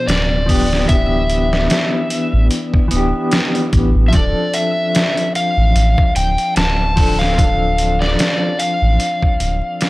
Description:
trip hop; 74 BPM; 4/4; swing 56% on 16ths; D dorian; A4 = 440 Hz
overdriven slide guitar; melody; 0.0-9.9 s; C5 to A5; -19 LUFS; left 1 dB; tape echo
mellow electric guitar; accompaniment; 0.0-9.9 s; B2 to A4; -20 LUFS; left 1 dB; tremolo, vintage 12-bit sampler grit
round analog bass; bass; 0.1-9.6 s; D1 to A1; -16 LUFS; equal
trip hop sampler-style drum kit; drums; 0.1-9.9 s; hi-hat, kick drum, snare drum; -17 LUFS; equal
digital ambience; dry, gritty hardware recording, vinyl crackle; -13 LUFS; side -19 dB against mid
0.0-9.9 A section
fade-out 8.5-9.9
0.0 G7/D; 0.9 Em7/D; 4.1 Dm7

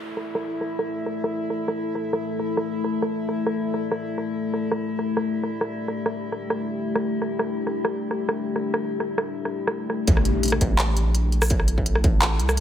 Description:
half-time drum and bass; 168 BPM; 4/4; half-time; A4 = 440 Hz
deep dark ambient pad; sustained chords; 0.0-12.6 s; A3 to A4; -27 LUFS; left 3 dB; chorus, built-in reverb, sidechain pumping
downlifter and impact; sound effects; 0.0-1.5, 10.1-11.5 s; -29 LUFS; equal
metallic inharmonic drone; texture; 0.0-10.1 s; E4; -34 LUFS; right 1 dB; chorus, built-in reverb
industrial drum kit; drums; 0.2-12.6 s; handclaps, hi-hat, rim click, shaker; -26 LUFS; right 1 dB; low-pass filter on hats, small room ambience, low-pass filter on snare, low-pass filter on cymbals, low-pass filter on perc
long sustained 808-style bass; bass; 10.1-12.6 s; A1 to C2; -22 LUFS; equal
electronic kick drum; drums; 10.1-12.1 s; -22 LUFS; equal; distortion, small room ambience
moderate lush hall reverb, RT60 1.9 s, digital ambience; -22 LUFS; side -10 dB against mid
0.0-10.1 A section; 10.1-12.6 B section
drop 10.1-12.6; impact 10.1-11.5
0.0 A5

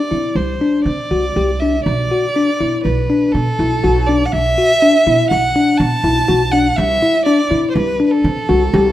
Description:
contemporary instrumental, chamber music in an uneven meter; 122 BPM; 5/4; straight; A4 = 438 Hz
rich violin; melody; 0.0-8.9 s; A4 to A5; -17 LUFS; right 1 dB
bell-like tine electric piano; arpeggios; 0.1-8.9 s; D4 to G4; -16 LUFS; left 2 dB
upright bass; bass; 0.1-8.9 s; B1 to C3; -19 LUFS; right 1 dB
moderate scoring stage reverb, RT60 1.7 s; -13 LUFS; side -13 dB against mid
0.0-8.9 A section
0.0 Cadd9; 1.9 Bm7; 6.8 Am/C

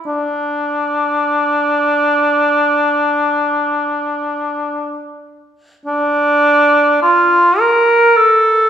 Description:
classical, free, expressive piece for unaccompanied cor anglais; 33-52 BPM; 4/4; rubato; D minor; A4 = 440 Hz
warm cor anglais; solo; 0.1-8.7 s; D4 to Bb4; -12 LUFS; equal
wet recital hall reverb, RT60 1.6 s; heard from further back in the room; -12 LUFS; side -9 dB against mid
0.0-5.9 A section; 5.9-8.7 A section

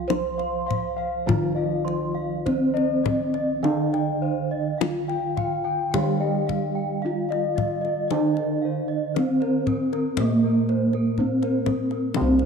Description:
Javanese gamelan; 51-62 BPM; 4/4; straight; C slendro; A4 = 440 Hz
gamelan-type bronze metallophone; melody; 0.0-12.5 s; Bb3-25c to C5; -25 LUFS; equal
gamelan-type bronze metallophone; accompaniment; 0.0-12.5 s; C3 to Bb3-25c; -31 LUFS; right 10 dB
gamelan-type bronze metallophone; arpeggios; 0.0-12.5 s; Bb4-25c to C6; -31 LUFS; right 8 dB
gamelan-type bossed gongs; bass; 0.0-12.5 s; C2 to F4; -29 LUFS; equal
kendang; percussion; 0.1-12.5 s; -28 LUFS; left 7 dB
gamelan-type bossed gongs; arpeggios; 0.4-12.2 s; Bb4-25c to C6; -30 LUFS; left 12 dB
moderate echo chamber reverb, RT60 1.8 s, small room ambience; 1960s-style stereo with parts hard left and right; -21 LUFS; side -6 dB against mid
0.0-12.2 A section

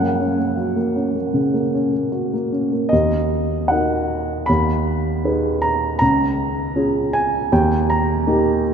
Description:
classical, lyrical solo piano; 79 BPM; 4/4; rubato; Eb minor; A4 = 440 Hz
dark baby grand piano; solo; 0.0-8.7 s; Db2 to Cb6; -17 LUFS; right 1 dB
wet cathedral reverb, RT60 4.9 s; in a vast, echoing space; -17 LUFS; side -7 dB against mid
0.0-2.9 A section; 2.9-8.7 B section
0.0 F#; 2.9 Ebm; 4.5 Abm/Eb; 6.0 Db; 7.5 Eb

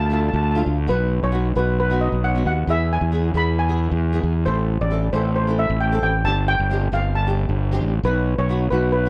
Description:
calypso; 134 BPM; 4/4; swing 54% on 16ths; A minor; A4 = 439 Hz
steel pan; melody; 0.0-9.1 s; B4 to B5; -26 LUFS; equal
fuzz fingered electric bass; bass; 0.0-9.1 s; G1 to E2; -22 LUFS; equal; overdrive
flamenco guitar; accompaniment; 0.1-9.1 s; A3 to A4; -30 LUFS; equal; double-tracked
moderate small room reverb, RT60 0.5 s; dark, warm production; -20 LUFS; mono
0.0-9.1 A section
0.0 Dm; 0.9 B; 2.7 E; 4.5 Am; 6.3 Gsus4; 8.0 B

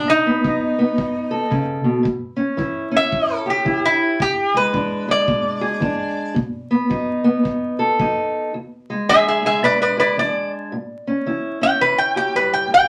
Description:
acoustic country blues, solo or duo; 111 BPM; 4/4; swing 63% on 8ths; E mixolydian; A4 = 440 Hz
metal-body resonator slide guitar; melody; 0.0-12.9 s; D#4 to G5; -19 LUFS; equal
fingerpicked steel-string acoustic guitar; accompaniment; 0.0-12.9 s; E2 to A4; -23 LUFS; equal
kick drum; drums; 0.4-8.2 s; -31 LUFS; equal
wet club reverb, RT60 0.5 s; vinyl crackle; -19 LUFS; mono
0.0-8.5 A section; 8.5-12.9 A section
resonator guitar played with a steel bar solo 0.0-12.9
0.0 B7; 2.0 A7; 4.2 E7; 6.4 B7; 8.5 E7; 10.7 A7

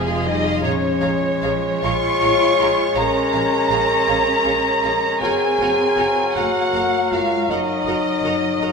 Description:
classical; 53 BPM (dotted quarters); 12/8; rubato; A4 = 435 Hz
warm symphonic violin section; melody; 0.0-8.7 s; Ab4 to Db6; -23 LUFS; left 1 dB
clear clarinet; second line; 0.0-8.7 s; Ab4 to Db6; -27 LUFS; left 2 dB
mellow cor anglais; second line; 0.0-8.7 s; Bb4 to F5; -29 LUFS; right 3 dB
mellow hollow concert flute; second line; 0.0-8.7 s; Ab4 to Db6; -26 LUFS; left 1 dB
warm symphonic violin section; second line; 0.0-8.7 s; C5 to C6; -32 LUFS; equal
mellow bassoon; accompaniment; 0.0-8.7 s; Gb3 to Ab3; -27 LUFS; right 3 dB
warm symphonic viola section; accompaniment; 0.0-8.7 s; F4 to Db5; -30 LUFS; right 2 dB
dark French horn section; sustained chords; 0.0-8.7 s; Db4 to Db5; -22 LUFS; left 4 dB
rich symphonic cello section; bass; 0.0-8.7 s; C3 to F4; -26 LUFS; right 4 dB
rich symphonic double bass section; bass; 0.0-8.7 s; F1 to Bb1; -30 LUFS; right 4 dB
wet scoring stage reverb, RT60 1.9 s; minimal, uncompressed stereo recording; -16 LUFS; side -5 dB against mid
0.0-8.7 A section
0.0 Fm; 0.6 Bbm7; 5.2 Ebm/Gb

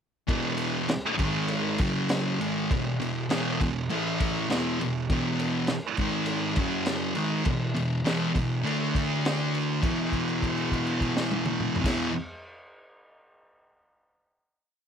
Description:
garage rock duo or trio; 101 BPM; 4/4; straight; E major; A4 = 442 Hz
thick fuzz guitar; riff; 0.3-12.1 s; E2 to D4; -26 LUFS; equal; distortion
crunchy breakbeat drum kit; drums; 0.3-12.0 s; crash cymbal, kick drum, ride cymbal, snare drum, toms; -31 LUFS; equal
light reverb; -25 LUFS; side -8 dB against mid
0.3-9.8 riff; 9.8-12.2 final chord
held note 9.8-11.8
0.3 E5; 1.2 G#5; 1.8 F#5; 2.4 E; 3.9 A5; 4.5 E5; 6.0 G#5; 6.6 F#5; 7.2 E; 8.7 D5; 9.8 E5

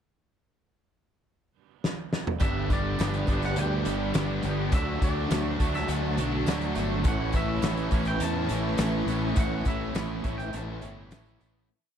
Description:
rock, shoegaze and dream pop; 103 BPM; 4/4; straight; A mixolydian; A4 = 441 Hz
loose indie drum kit; drums; 1.8-11.5 s; hi-hat, kick drum, snare drum, toms; -29 LUFS; equal
twangy electric guitar; melody; 2.4-11.4 s; D5 to A5; -38 LUFS; right 1 dB; tape echo
string machine, violas; sustained chords; 2.4-11.7 s; E4 to D6; -38 LUFS; equal; ensemble chorus
twangy electric guitar; arpeggios; 2.4-11.7 s; E3 to B3; -39 LUFS; right 8 dB; analog chorus, tape echo
biting overdriven guitar; riff; 2.4-11.7 s; G2 to G4; -34 LUFS; left 11 dB; wide subtle chorus
biting overdriven guitar; riff; 2.4-11.7 s; G2 to E4; -35 LUFS; right 11 dB; reverse reverb
cranked stack guitar; riff; 2.4-11.7 s; G2 to E4; -34 LUFS; equal; overdrive
fuzz fingered electric bass; bass; 2.4-11.7 s; G1 to E2; -31 LUFS; equal; overdrive
tambourine; percussion; 2.4-11.5 s; -52 LUFS; right 17 dB
little or no reverb; dark, warm production; -25 LUFS; side -8 dB against mid
0.1-2.4 pickup bar; 2.4-11.7 chorus
drum fill 1.8-2.4; fade-out 9.4-11.7
0.1 N.C.; 2.4 G; 4.7 D; 7.0 Aadd9

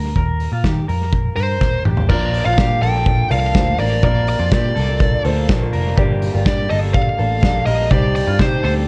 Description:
jangly indie pop; 124 BPM; 4/4; straight; Bb major; A4 = 440 Hz
electric guitar through a small old amp; arpeggios; 0.0-8.9 s; F4 to Bb4; -30 LUFS; equal; lush chorus, dub echo
vintage muted picked electric bass; bass; 0.0-8.9 s; F1 to Eb3; -22 LUFS; equal
loose indie drum kit; drums; 0.2-8.8 s; crash cymbal, hi-hat, kick drum, snare drum, toms; -21 LUFS; equal; vintage 12-bit sampler grit
fuzz lead guitar; melody; 1.4-8.7 s; C5 to G5; -24 LUFS; equal; distortion
dark upright piano; accompaniment; 2.1-8.9 s; D4 to D5; -30 LUFS; equal; dub echo
electric guitar through a small old amp; accompaniment; 2.1-8.9 s; G2 to Bb4; -30 LUFS; equal
light reverb, small room ambience; echo-heavy mix, cassette tape; -17 LUFS; mono
0.0-2.1 A section; 2.1-8.9 B section
drum fill 1.6-2.1
0.0 Eb; 2.1 Bb; 6.0 Gm; 7.9 Cmadd9

